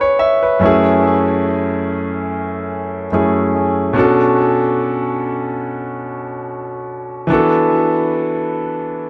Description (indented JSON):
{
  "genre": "reggae",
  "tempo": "72 BPM",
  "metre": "4/4",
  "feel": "swing 55% on 16ths",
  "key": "B dorian",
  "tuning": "A4 = 440 Hz",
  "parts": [
    { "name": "clear grand piano", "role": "solo", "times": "0.0-9.1 s", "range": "F#2 to E5", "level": "-17 LUFS", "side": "equal", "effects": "tape echo" }
  ],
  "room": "moderate stone room reverb, RT60 1.2 s",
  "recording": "band playing live in one room",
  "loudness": "-16 LUFS",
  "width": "mono",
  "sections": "0.0-4.0 A section; 4.0-9.1 B section",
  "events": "none",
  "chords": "0.0 C#m7; 0.6 F#m7; 4.0 Bm7; 7.3 E7sus4"
}